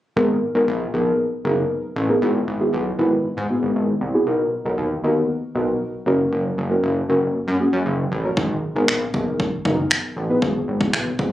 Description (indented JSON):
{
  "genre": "dance-pop",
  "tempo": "117 BPM",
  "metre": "4/4",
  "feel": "straight",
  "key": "G# minor",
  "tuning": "A4 = 440 Hz",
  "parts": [
    { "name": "deep mellow chord stab", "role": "accompaniment", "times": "0.2-11.3 s", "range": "A#3 to B4", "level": "-20 LUFS", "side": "equal", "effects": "chorus, sidechain pumping" },
    { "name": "chorused synth bass", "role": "bass", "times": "0.2-11.3 s", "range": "F#1 to G#2", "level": "-23 LUFS", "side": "equal", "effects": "sidechain pumping" },
    { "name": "punchy analog drum machine", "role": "drums", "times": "8.4-11.3 s", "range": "finger snaps, kick drum", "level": "-22 LUFS", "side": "equal", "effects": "none" }
  ],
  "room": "light reverb",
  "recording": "recorded on a phone in the room, club reverb, compression",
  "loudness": "-18 LUFS",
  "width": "side -14 dB against mid",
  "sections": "0.2-11.3 A section",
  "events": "none",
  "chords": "0.2 G#madd9; 2.2 Eadd9/G#; 4.3 Bmaj7; 6.1 F#; 8.4 G#madd9; 10.4 Eadd9/G#",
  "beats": "| 0.17 0.68 1.19 1.70 | 2.22 2.73 3.24 3.75 | 4.27 4.78 5.29 5.81 | 6.32 6.83 7.34 7.86 | 8.37 8.88 9.40 9.91 | 10.42 10.93"
}